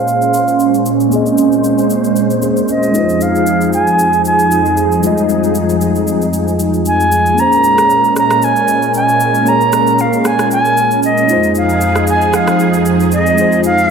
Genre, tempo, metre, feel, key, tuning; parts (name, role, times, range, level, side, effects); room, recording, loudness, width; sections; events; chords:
amapiano; 115 BPM; 4/4; swing 55% on 16ths; Bb minor; A4 = 442 Hz
concert flute; melody; 0.0-13.9 s; Eb5 to Bb5; -13 LUFS; right 2 dB; low-pass filter, analog delay
mellow tine electric piano; accompaniment; 0.0-13.9 s; G3 to Eb5; -17 LUFS; left 4 dB; medium stereo tremolo, low-pass filter
lush unison pad; sustained chords; 0.0-13.9 s; F2 to C5; -14 LUFS; right 2 dB; chorus, phaser, low-pass filter
electronic shaker and rim click; drums; 0.1-13.9 s; -24 LUFS; equal
wet plate reverb, RT60 1.4 s; dreamy mix soaked in reverb; -10 LUFS; side -6 dB against mid
0.0-13.9 A section
filter sweep 0.0-13.9
0.0 Bbm9; 2.9 Fm7; 7.4 Bbm9; 11.3 Fm7